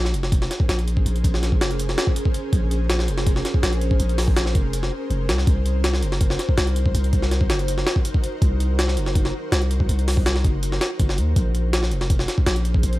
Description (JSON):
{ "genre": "drum and bass, jungle", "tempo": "163 BPM", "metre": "4/4", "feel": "straight", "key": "Bb minor", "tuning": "A4 = 440 Hz", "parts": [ { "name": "ethereal airy pad", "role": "sustained chords", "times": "0.0-13.0 s", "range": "Db4 to C5", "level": "-30 LUFS", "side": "equal", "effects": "ensemble chorus, built-in reverb" }, { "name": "long sustained 808-style bass", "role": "bass", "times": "0.0-13.0 s", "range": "F1 to Eb2", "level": "-22 LUFS", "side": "equal", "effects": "none" }, { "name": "jungle sampler-style drum kit", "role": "drums", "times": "0.1-13.0 s", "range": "hi-hat, kick drum, snare drum", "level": "-21 LUFS", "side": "equal", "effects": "overdrive" } ], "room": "little or no reverb", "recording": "vinyl crackle", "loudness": "-18 LUFS", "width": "side -17 dB against mid", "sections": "0.0-13.0 A section", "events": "none", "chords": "0.0 Bbm9; 5.5 Cm7b5; 11.4 Bbm9" }